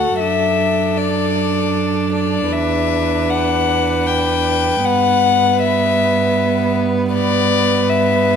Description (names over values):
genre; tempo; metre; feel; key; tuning
classical, slow romantic movement for string quartet; 78 BPM; 3/4; rubato; unclear; A4 = 440 Hz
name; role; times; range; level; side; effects
warm violin; melody; 0.0-8.4 s; D5 to G5; -17 LUFS; left 7 dB; none
rich violin; second line; 0.0-8.4 s; A4 to B4; -21 LUFS; left 2 dB; none
rich viola; accompaniment; 0.0-8.4 s; B3 to F#4; -21 LUFS; right 6 dB; none
warm cello; bass; 0.0-8.4 s; D2 to G2; -21 LUFS; right 5 dB; none
room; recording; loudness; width
moderate recital hall reverb, RT60 1.4 s; none; -14 LUFS; side -7 dB against mid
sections
0.0-8.4 A section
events
none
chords
0.2 D/F#; 2.5 Em7; 4.9 Em/G